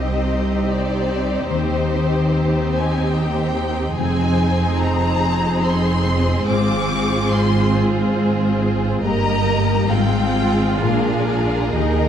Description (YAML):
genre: classical, slow romantic movement for symphony orchestra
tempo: 60-74 BPM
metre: 3/4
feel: rubato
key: unclear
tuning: A4 = 440 Hz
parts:
  - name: warm symphonic violin section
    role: melody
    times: 0.0-12.1 s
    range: C5 to D6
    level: -26 LUFS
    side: left 3 dB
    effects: none
  - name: warm symphonic violin section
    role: second line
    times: 0.0-12.1 s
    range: G4 to F5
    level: -24 LUFS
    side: left 1 dB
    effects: none
  - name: rich symphonic viola section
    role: accompaniment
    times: 0.0-12.1 s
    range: Bb3 to G4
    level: -24 LUFS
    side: right 1 dB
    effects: none
  - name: concert harp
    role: arpeggios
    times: 0.0-12.1 s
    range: G2 to Eb5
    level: -26 LUFS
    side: left 6 dB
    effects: none
  - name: clear studio double bass section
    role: bass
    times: 0.0-12.1 s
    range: F1 to Eb2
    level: -23 LUFS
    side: right 3 dB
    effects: none
  - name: warm symphonic cello section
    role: bass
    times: 0.0-12.1 s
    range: C2 to Bb2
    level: -22 LUFS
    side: right 1 dB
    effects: none
room: wet concert hall reverb, RT60 2.4 s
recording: dark, warm production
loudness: -16 LUFS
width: side -9 dB against mid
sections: 0.0-12.1 A section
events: none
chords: 0.0 Cm; 1.5 Cm/Eb; 4.0 Fm7; 6.5 Fm/Ab; 9.0 Eb/G; 9.9 Fm/Ab; 10.8 Bb7